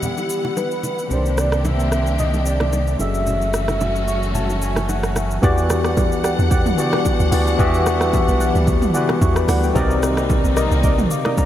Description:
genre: amapiano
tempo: 111 BPM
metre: 4/4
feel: swing 55% on 16ths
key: unclear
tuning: A4 = 440 Hz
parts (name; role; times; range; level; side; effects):
- warm velvety synth lead; melody; 0.0-4.9 s; G4 to E5; -25 LUFS; equal; chorus, tape echo
- tine electric piano; accompaniment; 0.0-11.5 s; C3 to D6; -22 LUFS; left 2 dB; medium stereo tremolo
- warm studio string section; sustained chords; 0.0-11.5 s; D3 to F#5; -26 LUFS; left 1 dB; sidechain pumping
- deep house drum kit; drums; 0.0-11.5 s; hi-hat, kick drum, rim click, shaker, toms; -22 LUFS; right 1 dB; none
- congas and bongos; percussion; 0.0-11.5 s; none; -29 LUFS; right 2 dB; none
- sub bass with octave; bass; 1.1-5.4 s; F#1 to C2; -22 LUFS; equal; none
- deep mellow chord stab; stabs; 5.4-11.4 s; G4 to F#5; -26 LUFS; right 1 dB; chorus, tape echo
- deep log drum bass; bass; 5.4-11.1 s; B1 to E2; -20 LUFS; equal; none
room: moderate huge ambient reverb, RT60 7.1 s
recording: dreamy mix soaked in reverb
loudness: -16 LUFS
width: side -12 dB against mid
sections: 0.0-5.4 A section; 5.4-11.5 B section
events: tine electric piano fill 3.8-5.4; drop 5.4-11.5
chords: 0.0 Em9; 1.1 Cm9; 3.0 F#m9; 5.4 Em9; 9.8 Cm9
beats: 0.03 0.56 | 1.11 1.65 2.19 2.73 | 3.27 3.81 4.35 4.89 | 5.43 5.97 6.51 7.05 | 7.59 8.13 8.67 9.21 | 9.76 10.29 10.84 11.38

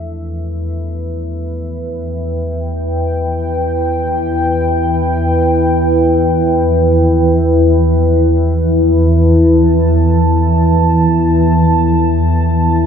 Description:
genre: dark ambient drone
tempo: free time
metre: none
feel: none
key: unclear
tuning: A4 = 440 Hz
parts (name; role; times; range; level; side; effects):
- deep dark ambient pad; sustained chords; 0.0-12.9 s; D4 to A5; -14 LUFS; left 1 dB; chorus, built-in reverb
- deep rumbling drone; drone; 0.0-12.9 s; E2 to E3; -14 LUFS; equal; built-in reverb, phaser
room: wet cathedral reverb, RT60 5.6 s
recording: none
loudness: -11 LUFS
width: side -7 dB against mid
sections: 0.0-12.9 A section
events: none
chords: 0.0 D5/E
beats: free time

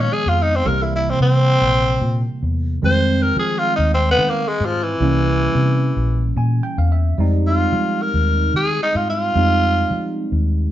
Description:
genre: straight-eighth soul blues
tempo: 110 BPM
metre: 4/4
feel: straight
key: F minor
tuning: A4 = 440 Hz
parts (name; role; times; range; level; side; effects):
- growling tenor saxophone; melody; 0.0-10.2 s; E3 to C5; -19 LUFS; equal; none
- tine electric piano; accompaniment; 0.0-10.7 s; C3 to Ab5; -22 LUFS; right 3 dB; phaser
- vintage muted fingered electric bass; bass; 0.0-10.7 s; Bb1 to F3; -19 LUFS; left 1 dB; none
room: moderate stone room reverb, RT60 1.0 s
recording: band playing live in one room, nothing above 7.5 kHz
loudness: -15 LUFS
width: side -12 dB against mid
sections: 0.0-7.2 A section; 7.2-10.7 B section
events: tenor saxophone solo 0.0-7.2; tine electric piano fill 6.1-7.2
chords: 0.0 Db7; 0.7 C7; 2.8 Fm7; 5.0 C7b9; 7.2 Fm7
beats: 0.12 | 0.66 1.21 1.75 2.29 | 2.84 3.38 3.92 4.47 | 5.01 5.55 6.10 6.64 | 7.19 7.73 8.27 8.82 | 9.36 9.91 10.45

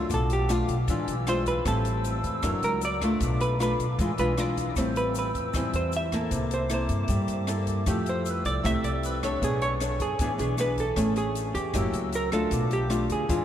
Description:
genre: bossa nova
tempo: 155 BPM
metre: 4/4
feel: straight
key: A minor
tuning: A4 = 440 Hz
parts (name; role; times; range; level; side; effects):
- nylon-string guitar; accompaniment; 0.0-13.4 s; A2 to C#5; -28 LUFS; left 1 dB; none
- dark woodwind section; sustained chords; 0.0-13.4 s; A3 to E6; -37 LUFS; left 1 dB; none
- upright bass; bass; 0.0-13.4 s; F#1 to G2; -30 LUFS; equal; none
- hollow-body jazz guitar; melody; 0.1-13.4 s; F4 to E5; -30 LUFS; right 2 dB; ping-pong delay
- open jazz drum kit; drums; 0.1-13.4 s; hi-hat, kick drum, rim click; -34 LUFS; equal; none
- egg shaker; percussion; 0.1-13.4 s; none; -45 LUFS; left 16 dB; none
room: moderate cathedral reverb, RT60 6.2 s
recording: dreamy mix soaked in reverb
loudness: -24 LUFS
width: side -10 dB against mid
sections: 0.0-4.8 A section; 4.8-13.4 A section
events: hollow-body jazz guitar solo 0.0-13.4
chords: 0.1 Bm7b5; 0.9 E7b9; 1.7 Am7; 2.4 F#7b13; 3.2 Bm7b5; 4.0 E7b9; 4.8 Am7; 6.3 C13; 7.9 Fmaj9; 9.4 Bm9; 10.2 E7; 11.0 Amaj7; 11.7 F#7b9; 12.5 Bm7b5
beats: | 0.10 0.49 0.88 1.27 | 1.66 2.04 2.43 2.82 | 3.21 3.60 3.98 4.37 | 4.76 5.15 5.54 5.92 | 6.31 6.70 7.09 7.48 | 7.86 8.25 8.64 9.03 | 9.42 9.80 10.19 10.58 | 10.97 11.36 11.74 12.13 | 12.52 12.90 13.29

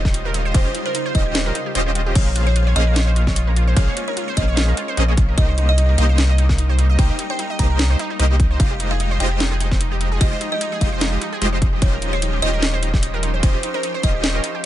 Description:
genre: future bass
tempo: 149 BPM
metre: 4/4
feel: swing 55% on 16ths, half-time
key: F minor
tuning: A4 = 439 Hz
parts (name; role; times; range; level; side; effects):
- shimmering ambient pad; sustained chords; 0.0-14.7 s; Db3 to C5; -30 LUFS; equal; chorus, built-in reverb, sidechain pumping
- supersaw stab; riff; 0.0-14.4 s; Ab3 to F5; -26 LUFS; equal; sidechain pumping
- saturated sub bass; bass; 0.0-14.4 s; Eb1 to C2; -18 LUFS; equal; sidechain pumping
- wide unison pluck; arpeggios; 0.1-14.6 s; Eb4 to Eb5; -29 LUFS; right 4 dB; sidechain pumping, dub echo
- electronic kick drum; drums; 0.1-14.1 s; none; -17 LUFS; equal; none
- trap drum kit; drums; 0.1-14.5 s; crash cymbal, hi-hat, snare drum; -24 LUFS; equal; none
- buzzing kalimba; melody; 0.5-14.3 s; C5 to Bb5; -27 LUFS; equal; sidechain pumping, dub echo
room: little or no reverb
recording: nothing above 10.9 kHz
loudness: -16 LUFS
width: side -13 dB against mid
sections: 0.0-14.7 A section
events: kick drops out 1.4-2.2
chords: 0.0 Eb13; 2.2 Bbm9; 5.4 Cm7; 8.6 Fm9; 11.8 Eb13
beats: 0.14 | 0.54 0.95 1.35 1.75 | 2.15 2.56 2.96 3.36 | 3.77 4.17 4.57 4.97 | 5.38 5.78 6.18 6.58 | 6.99 7.39 7.79 8.20 | 8.60 9.00 9.40 9.81 | 10.21 10.61 11.01 11.42 | 11.82 12.22 12.62 13.03 | 13.43 13.83 14.24 14.64

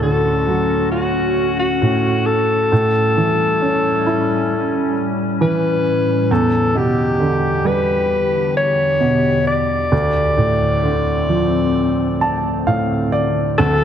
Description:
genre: pop ballad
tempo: 67 BPM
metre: 4/4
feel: straight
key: D major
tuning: A4 = 440 Hz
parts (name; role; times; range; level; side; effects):
- breathy alto saxophone; melody; 0.0-13.8 s; F#4 to D5; -18 LUFS; left 2 dB; none
- warm baby grand piano; accompaniment; 0.0-13.8 s; D1 to A5; -19 LUFS; right 2 dB; none
- glassy FM pad; sustained chords; 0.0-13.8 s; D2 to G4; -21 LUFS; left 1 dB; ensemble chorus, built-in reverb
- fingerpicked steel-string acoustic guitar; arpeggios; 13.6-13.8 s; D3 to A4; -22 LUFS; left 7 dB; none
room: moderate lush hall reverb, RT60 1.8 s, small room ambience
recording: none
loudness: -15 LUFS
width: side -9 dB against mid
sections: 0.0-13.6 A section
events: grand piano fill 11.7-13.6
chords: 0.0 Dmaj7; 2.7 A7; 6.3 Em7; 9.9 Dm7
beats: 0.02 0.92 1.81 | 2.72 3.62 4.51 5.41 | 6.31 7.20 8.10 9.01 | 9.92 10.83 11.75 12.67 | 13.59

